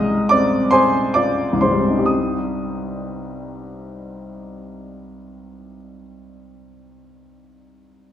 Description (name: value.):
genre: classical, romantic character piece for solo piano.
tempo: 41-52 BPM (dotted quarters).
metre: 6/8.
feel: rubato.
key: C minor.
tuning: A4 = 440 Hz.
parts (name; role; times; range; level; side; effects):
warm upright piano; solo; 0.0-8.1 s; C2 to Eb6; -18 LUFS; equal; none.
room: wet recital hall reverb, RT60 1.8 s.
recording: none.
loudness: -16 LUFS.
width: side -10 dB against mid.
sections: 0.0-2.1 A section; 2.1-6.9 B section.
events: slowing down 0.0-2.1.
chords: 0.0 Fm/C; 2.1 Cm.